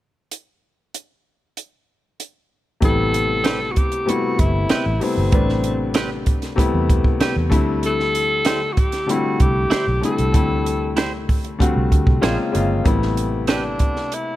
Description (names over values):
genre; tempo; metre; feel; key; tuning
lush 1970s-style soul; 96 BPM; 4/4; straight; A dorian; A4 = 435 Hz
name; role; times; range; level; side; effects
compact cocktail drum kit; drums; 0.3-14.3 s; hi-hat, kick drum, snare drum; -20 LUFS; right 1 dB; none
clear grand piano; accompaniment; 2.8-14.4 s; C3 to B4; -22 LUFS; left 3 dB; none
vintage muted fingered electric bass; bass; 2.8-13.9 s; G1 to E2; -23 LUFS; right 1 dB; none
breathy tenor saxophone; melody; 2.9-14.4 s; C4 to A4; -23 LUFS; left 1 dB; none
clean electric guitar; riff; 3.4-13.6 s; C4 to C5; -28 LUFS; right 4 dB; none
room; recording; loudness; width
small room ambience; none; -16 LUFS; side -15 dB against mid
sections
0.3-2.8 A section; 2.8-12.9 B section; 12.9-14.4 C section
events
none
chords
0.3 N.C.; 2.8 Am9; 7.5 D9sus4; 12.2 Bbm9; 12.9 Am9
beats
| 0.31 0.94 1.56 2.19 | 2.82 3.44 4.07 4.70 | 5.32 5.95 6.58 7.20 | 7.83 8.46 9.09 9.71 | 10.34 10.97 11.60 12.22 | 12.85 13.48 14.11